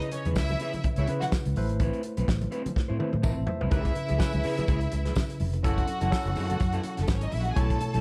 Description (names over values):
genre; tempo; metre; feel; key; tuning
disco; 125 BPM; 4/4; swing 56% on 16ths; unclear; A4 = 440 Hz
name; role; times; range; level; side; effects
barky tine electric piano; accompaniment; 0.0-8.0 s; B2 to A5; -36 LUFS; equal; none
electric guitar at the edge of break-up; accompaniment; 0.0-8.0 s; C4 to C#5; -39 LUFS; equal; none
warm soul drum kit; drums; 0.0-8.0 s; hi-hat, kick drum, snare drum, toms; -31 LUFS; equal; none
bright studio string section; second line; 0.1-8.0 s; A3 to A5; -36 LUFS; equal; slapback echo
congas; percussion; 0.1-8.0 s; none; -41 LUFS; equal; none
fingered electric bass; bass; 0.3-8.0 s; F1 to C#3; -31 LUFS; equal; none
tambourine; percussion; 0.4-7.2 s; none; -52 LUFS; equal; none
room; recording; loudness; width
small room reverb; dark, warm production; -27 LUFS; mono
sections
0.0-3.7 A section; 3.7-8.0 B section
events
drum fill 2.8-3.7; tine electric piano fill 3.0-3.7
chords
0.0 C#m7; 1.6 Amadd9; 3.7 C#m7; 5.6 F#m7